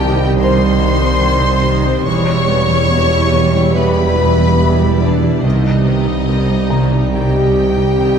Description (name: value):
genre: cinematic, hybrid orchestral and electronic film score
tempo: 71 BPM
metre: 4/4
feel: straight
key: unclear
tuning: A4 = 440 Hz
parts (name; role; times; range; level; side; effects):
- clear symphonic violin section; melody; 0.0-8.2 s; D5 to Db6; -23 LUFS; left 5 dB; none
- warm chamber violin section; second line; 0.0-8.2 s; D4 to Db5; -22 LUFS; equal; none
- rich studio viola section; accompaniment; 0.0-8.2 s; Eb3 to E4; -23 LUFS; right 1 dB; none
- clear trombone section; sustained chords; 0.0-8.2 s; B2 to G3; -23 LUFS; right 5 dB; none
- mellow French horn section; sustained chords; 0.0-8.2 s; D4 to Db5; -21 LUFS; left 6 dB; none
- metallic inharmonic drone; sustained chords; 0.0-8.2 s; G3 to E5; -21 LUFS; right 3 dB; chorus, built-in reverb
- thumb-piano-like synth pluck; arpeggios; 0.0-8.1 s; C3 to E4; -23 LUFS; left 2 dB; none
- dark symphonic cello section; bass; 0.0-8.2 s; C2 to E2; -18 LUFS; right 2 dB; none
- warm studio double bass section; bass; 0.0-8.2 s; E1 to C2; -17 LUFS; right 2 dB; none
- felt-muted upright piano; texture; 0.0-8.2 s; A5 to Bb5; -31 LUFS; left 3 dB; none
room: wet scoring stage reverb, RT60 1.9 s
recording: dark, warm production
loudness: -11 LUFS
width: side -7 dB against mid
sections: 0.0-8.2 A section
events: none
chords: 0.0 Cm; 2.1 Em; 5.4 Cm